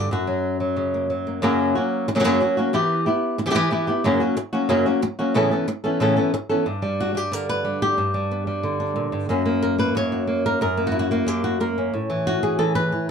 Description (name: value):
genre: flamenco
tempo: 183 BPM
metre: 4/4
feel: straight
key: F# phrygian dominant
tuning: A4 = 440 Hz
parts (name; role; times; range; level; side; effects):
- flamenco guitar; solo; 0.0-13.1 s; F#2 to C#5; -20 LUFS; equal; none
room: wet booth ambience, RT60 0.2 s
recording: none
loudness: -20 LUFS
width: side -6 dB against mid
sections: 0.0-1.4 A section; 1.4-6.7 B section; 6.7-13.1 C section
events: none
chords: 0.1 F#; 2.7 Em; 4.0 F#; 5.3 Aadd9; 6.7 G; 9.3 F#; 11.9 A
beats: | 0.11 0.44 0.77 1.09 | 1.42 1.75 2.08 2.40 | 2.73 3.06 3.38 3.71 | 4.04 4.37 4.69 5.02 | 5.35 5.68 6.00 6.33 | 6.66 6.99 7.32 7.64 | 7.97 8.30 8.63 8.96 | 9.29 9.62 9.95 10.28 | 10.61 10.94 11.27 11.60 | 11.94 12.27 12.60 12.93